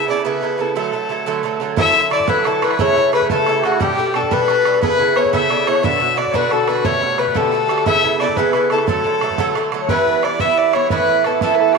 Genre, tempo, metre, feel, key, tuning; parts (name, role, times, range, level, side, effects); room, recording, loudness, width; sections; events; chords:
celtic folk, Celtic jig; 118 BPM (dotted quarters); 6/8; straight; D major; A4 = 438 Hz
clear fiddle; melody; 0.0-11.8 s; F#4 to E5; -18 LUFS; left 4 dB
Irish bouzouki; accompaniment; 0.0-11.8 s; G2 to A4; -19 LUFS; right 10 dB
accordion; second line; 1.8-11.8 s; F#4 to E5; -20 LUFS; left 11 dB
bodhran; percussion; 1.8-11.8 s; -24 LUFS; right 5 dB
wet spring reverb, RT60 2.6 s; 1960s-style stereo with parts hard left and right; -14 LUFS; side -4 dB against mid
0.0-1.8 A section; 1.8-9.9 A section; 9.9-11.8 B section
0.0 Aadd9; 0.8 D; 1.8 Dadd9; 2.8 A; 3.8 Gadd9; 4.8 Aadd9; 5.8 Bm; 6.8 Gadd9/B; 7.9 Aadd9; 8.9 D; 9.9 Em; 10.9 Asus2